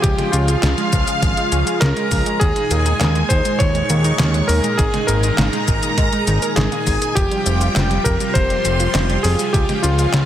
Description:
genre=synthwave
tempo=101 BPM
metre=4/4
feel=straight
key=unclear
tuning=A4 = 441 Hz
part: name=warm electric grand piano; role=melody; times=0.0-10.3 s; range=F4 to Db5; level=-22 LUFS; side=left 1 dB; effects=tape echo
part: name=string machine, violins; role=second line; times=0.0-10.3 s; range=F5 to Db6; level=-26 LUFS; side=equal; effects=ensemble chorus, tape echo
part: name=warm analog pad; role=sustained chords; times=0.0-10.3 s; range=Bb2 to Ab4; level=-24 LUFS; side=equal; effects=chorus, sidechain pumping
part: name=analog pluck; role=arpeggios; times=0.0-10.2 s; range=Eb3 to Bb4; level=-26 LUFS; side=right 3 dB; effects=chorus, tape echo
part: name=fat analog bass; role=bass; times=0.0-10.2 s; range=F1 to Ab2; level=-19 LUFS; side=equal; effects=sidechain pumping
part: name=detuned 8-bit digital drum machine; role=drums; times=0.0-10.3 s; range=handclaps, hi-hat, shaker, snare drum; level=-22 LUFS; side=left 1 dB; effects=overdrive
part: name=electronic kick drum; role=drums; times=0.0-9.7 s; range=none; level=-20 LUFS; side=equal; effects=overdrive
part: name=downlifter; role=sound effects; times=0.0-2.4 s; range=none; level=barely audible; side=none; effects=none
room=light reverb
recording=dense, heavily limited modern master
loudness=-15 LUFS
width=side -11 dB against mid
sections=0.0-10.3 A section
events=none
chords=0.0 Db; 2.4 Ebsus4; 4.8 Absus2; 7.2 Fsus2; 9.5 Db

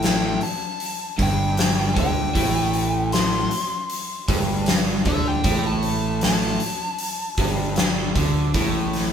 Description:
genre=blues rock power trio and southern rock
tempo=77 BPM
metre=4/4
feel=straight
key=A minor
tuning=A4 = 440 Hz
part: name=biting lead guitar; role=melody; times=0.0-7.7 s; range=E5 to C6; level=-27 LUFS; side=left 2 dB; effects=wah, overdrive
part: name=crunchy overdriven guitar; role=riff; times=0.0-9.1 s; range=G2 to D3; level=-24 LUFS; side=equal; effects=none
part: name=fuzz fingered electric bass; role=bass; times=0.0-9.1 s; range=G1 to D2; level=-26 LUFS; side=right 2 dB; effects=overdrive
part: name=big rock drum kit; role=drums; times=0.0-9.1 s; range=hi-hat, kick drum, snare drum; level=-23 LUFS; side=equal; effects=none
room=moderate studio reverb, RT60 0.7 s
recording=band playing live in one room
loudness=-19 LUFS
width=side -8 dB against mid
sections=0.0-9.1 A section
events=none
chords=none

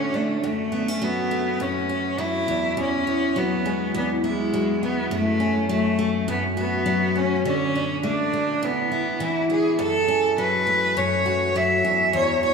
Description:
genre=pop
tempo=103 BPM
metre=4/4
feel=swing 55% on 16ths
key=unclear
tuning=A4 = 440 Hz
part: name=clear cello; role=melody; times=0.0-12.5 s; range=G#3 to E5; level=-22 LUFS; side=equal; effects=none
part: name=picked steel-string acoustic guitar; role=accompaniment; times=0.0-12.5 s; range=E2 to F#4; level=-24 LUFS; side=left 1 dB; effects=none
room=wet church reverb, RT60 3.7 s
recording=recorded in a church or concert hall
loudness=-20 LUFS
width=side -5 dB against mid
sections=0.0-9.8 A section; 9.8-12.5 A section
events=none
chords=0.4 F#m; 2.5 Eadd9; 5.1 F#m; 7.5 D5; 8.6 E5; 9.8 F#m; 11.8 Esus2

